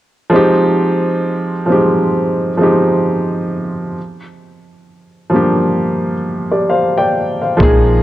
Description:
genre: lo-fi hip hop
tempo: 66 BPM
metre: 4/4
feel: swing 60% on 16ths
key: F dorian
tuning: A4 = 439 Hz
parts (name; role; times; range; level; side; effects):
- dark upright piano; accompaniment; 0.3-8.0 s; F3 to G5; -12 LUFS; equal; cassette tape, low-pass filter
- deep dub fingered electric bass; bass; 7.6-8.0 s; Bb1; -14 LUFS; equal; none
- electronic kick drum; drums; 7.6-7.9 s; none; -12 LUFS; equal; none
room: light reverb, studio ambience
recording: cassette tape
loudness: -12 LUFS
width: side -14 dB against mid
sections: 0.3-8.0 A section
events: none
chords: 0.3 Fm9; 4.0 Gm7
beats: | 0.33 1.24 2.15 3.06 | 3.96 4.87 5.78 6.69 | 7.60

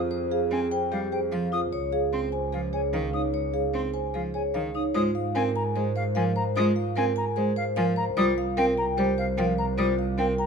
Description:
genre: classical, minimalist pattern music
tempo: 149 BPM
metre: 4/4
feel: straight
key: Ab major from 4.9 s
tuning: A4 = 441 Hz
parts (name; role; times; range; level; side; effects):
- vibraphone with medium mallets; melody; 0.0-10.5 s; G4 to Ab5; -30 LUFS; left 12 dB; none
- marimba with soft mallets; arpeggios; 0.0-10.4 s; Eb4 to C5; -29 LUFS; right 7 dB; none
- rich double bass; bass; 0.0-10.5 s; C2 to Ab2; -31 LUFS; right 3 dB; none
- rich cello; accompaniment; 0.5-10.3 s; Eb3 to C4; -29 LUFS; right 1 dB; none
- silver concert flute; arpeggios; 0.5-10.5 s; F5 to Eb6; -32 LUFS; left 3 dB; none
room: moderate recital hall reverb, RT60 1.5 s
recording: close, detailed microphones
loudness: -24 LUFS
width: side -6 dB against mid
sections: 0.0-4.9 A section; 4.9-10.5 B section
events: none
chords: 0.0 Fm; 1.7 Dbmaj7; 4.9 Abadd9; 8.2 C7(no3)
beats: | 0.12 0.52 0.92 1.32 | 1.73 2.13 2.53 2.93 | 3.34 3.74 4.14 4.54 | 4.95 5.35 5.75 6.16 | 6.56 6.96 7.36 7.77 | 8.17 8.57 8.97 9.38 | 9.78 10.18

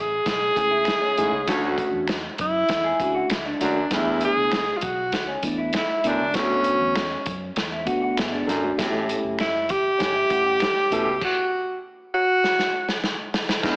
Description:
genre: uptempo 1960s-style soul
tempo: 99 BPM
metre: 4/4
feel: straight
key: unclear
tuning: A4 = 440 Hz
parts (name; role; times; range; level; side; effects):
- breathy tenor saxophone; melody; 0.0-13.0 s; C#4 to G#4; -22 LUFS; equal; none
- vintage muted fingered electric bass; bass; 0.0-13.8 s; E1 to F#2; -39 LUFS; equal; none
- crunchy breakbeat drum kit; drums; 0.3-13.8 s; crash cymbal, hi-hat, kick drum, snare drum; -27 LUFS; equal; none
- tine electric piano; accompaniment; 0.6-13.8 s; D3 to F#5; -27 LUFS; equal; none
- electric guitar through a small old amp; riff; 0.6-11.2 s; C#4 to G#4; -30 LUFS; equal; none
- finger snap; percussion; 0.9-10.7 s; none; -35 LUFS; equal; none
- bright baritone saxophone; riff; 1.2-13.8 s; D2 to B2; -28 LUFS; equal; none
- clear horn section; second line; 1.5-1.7 s; A3 to C#5; -32 LUFS; equal; none
room: moderate echo chamber reverb, RT60 1.7 s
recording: heavily compressed radio sound, AM radio sound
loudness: -20 LUFS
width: side -28 dB against mid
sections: 0.0-13.6 A section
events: band accent 1.5-3.9; drum fill 12.4-13.6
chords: 0.0 Amaj7; 1.5 Dmaj7; 3.9 E7sus4; 6.3 D6; 8.8 A7; 11.2 N.C.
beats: 0.26 0.87 | 1.48 2.09 2.69 3.30 | 3.91 4.52 5.13 5.74 | 6.35 6.96 7.57 8.18 | 8.78 9.39 10.00 10.61 | 11.21 11.82 12.42 13.03 | 13.63

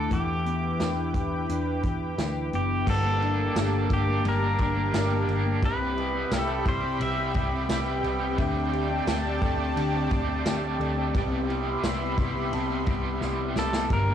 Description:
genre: dream pop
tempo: 87 BPM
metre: 4/4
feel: straight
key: C major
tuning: A4 = 442 Hz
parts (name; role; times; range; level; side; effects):
- pedal steel guitar; melody; 0.0-8.0, 13.6-14.1 s; G4 to E5; -31 LUFS; equal; analog delay
- lush unison pad; sustained chords; 0.0-14.1 s; Bb3 to D6; -31 LUFS; equal; chorus
- mellow electric guitar; arpeggios; 0.0-14.1 s; G2 to B4; -31 LUFS; left 5 dB; analog chorus, analog delay
- vintage muted picked electric bass; bass; 0.0-14.1 s; F#1 to E2; -30 LUFS; equal; none
- vintage drum kit; drums; 0.1-14.1 s; crash cymbal, hi-hat, kick drum, ride cymbal, snare drum, tambourine; -30 LUFS; equal; none
- raw garage guitar; accompaniment; 2.9-14.1 s; G2 to A4; -33 LUFS; right 5 dB; overdrive, harmonic tremolo, wide subtle chorus
- celesta; texture; 2.9-3.8, 8.4-13.4 s; E5 to A5; -43 LUFS; equal; none
room: light reverb, small room ambience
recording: dry, gritty hardware recording, cassette tape, faint mains hum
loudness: -24 LUFS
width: side -9 dB against mid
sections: 0.0-2.9 A section; 2.9-14.1 B section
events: drum fill 13.2-13.9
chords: 0.1 Em7; 2.9 Gmadd9; 5.6 Cmaj7; 8.4 D7sus4; 11.1 Cmaj7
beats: | 0.11 0.80 1.49 2.18 | 2.87 3.56 4.25 4.94 | 5.63 6.32 7.01 7.70 | 8.39 9.08 9.77 10.46 | 11.14 11.84 12.52 13.21 | 13.90

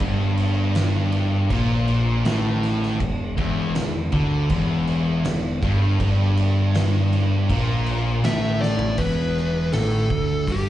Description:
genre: stoner and doom metal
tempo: 80 BPM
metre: 4/4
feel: straight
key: E minor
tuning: A4 = 439 Hz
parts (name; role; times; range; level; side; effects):
- heavy high-gain guitar; riff; 0.0-9.0 s; E2 to D3; -30 LUFS; left 1 dB; distortion, slapback echo
- thick fuzz guitar; riff; 0.0-10.7 s; E2 to D3; -24 LUFS; left 3 dB; distortion
- thick fuzz guitar; riff; 0.0-10.7 s; E2 to D3; -25 LUFS; right 3 dB; distortion
- growling picked electric bass; bass; 0.0-10.7 s; E1 to D2; -26 LUFS; equal; overdrive
- oversized low-tuned drum kit; drums; 0.0-10.7 s; crash cymbal, hi-hat, kick drum, snare drum, toms; -27 LUFS; equal; none
- fuzz lead guitar; melody; 8.2-10.7 s; G4 to E5; -26 LUFS; equal; distortion, slapback echo
room: light reverb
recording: live gig heard through the venue's PA, club reverb, nothing above 10.4 kHz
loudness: -19 LUFS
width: side -13 dB against mid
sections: 0.0-9.0 A section; 9.0-10.7 B section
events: drum fill 8.6-9.0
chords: 0.0 Em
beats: | 0.01 0.76 1.51 2.26 | 3.01 3.76 4.51 5.25 | 6.00 6.75 7.50 8.24 | 8.99 9.73 10.48

